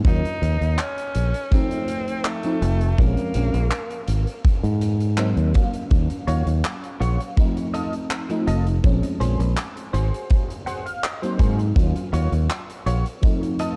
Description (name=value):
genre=vaporwave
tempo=82 BPM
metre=4/4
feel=straight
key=Eb dorian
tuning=A4 = 445 Hz
part: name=FM electric piano with soft pad layer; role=accompaniment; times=0.0-13.8 s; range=F3 to F5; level=-30 LUFS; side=equal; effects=phaser, ensemble chorus, cassette tape, tape echo
part: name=fingered electric bass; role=bass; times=0.0-13.0 s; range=F1 to Ab2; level=-23 LUFS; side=equal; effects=none
part: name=kick drum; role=drums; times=0.0-13.4 s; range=none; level=-23 LUFS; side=equal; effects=vintage 12-bit sampler grit
part: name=bright tenor saxophone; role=melody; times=0.1-4.5 s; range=A3 to Eb4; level=-32 LUFS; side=equal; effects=tape echo
part: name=huge arena drum kit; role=drums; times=0.1-13.7 s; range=handclaps, hi-hat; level=-36 LUFS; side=equal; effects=vintage 12-bit sampler grit
part: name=clean electric guitar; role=riff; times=6.3-13.8 s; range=Db4 to Gb5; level=-34 LUFS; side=equal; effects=analog chorus, tape echo
room=light reverb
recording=dark, warm production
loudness=-22 LUFS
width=mono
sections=0.0-13.8 A section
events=clean electric guitar fill 10.3-11.8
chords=0.1 Ebm9; 1.5 F7; 3.0 Bbm9; 4.1 Ab7; 5.9 Ebm9; 7.4 F7; 8.8 Bbm9; 9.9 Ab7; 11.8 Ebm9; 13.2 F7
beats=| 0.06 0.79 1.52 2.25 | 2.99 3.72 4.45 5.18 | 5.91 6.64 7.38 8.11 | 8.84 9.57 10.30 11.03 | 11.77 12.50 13.23